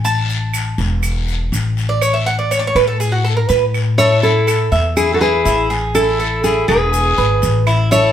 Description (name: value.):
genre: latin, Cuban son and guajira.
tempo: 122 BPM.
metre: 4/4.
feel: straight.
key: A major.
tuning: A4 = 440 Hz.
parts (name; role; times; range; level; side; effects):
Cuban tres; arpeggios; 0.0-8.1 s; E4 to A5; -18 LUFS; right 3 dB; none.
upright bass; bass; 0.0-8.1 s; E1 to A2; -18 LUFS; left 1 dB; none.
guiro; percussion; 0.0-8.1 s; none; -28 LUFS; left 5 dB; none.
maracas; percussion; 0.0-8.1 s; none; -30 LUFS; right 4 dB; none.
claves; percussion; 0.5-7.9 s; none; -28 LUFS; right 4 dB; none.
nylon-string guitar; melody; 4.0-8.1 s; G#4 to C#5; -15 LUFS; left 1 dB; none.
clear trumpet; second line; 4.0-8.1 s; E4 to A4; -20 LUFS; left 3 dB; none.
room: wet studio reverb, RT60 0.7 s.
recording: heard from further back in the room.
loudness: -13 LUFS.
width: side -10 dB against mid.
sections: 0.0-4.0 A section; 4.0-8.1 B section.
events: Cuban tres solo 0.0-4.0.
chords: 0.1 A5; 2.0 A69; 4.0 A5; 5.0 E; 6.0 A5; 6.9 E.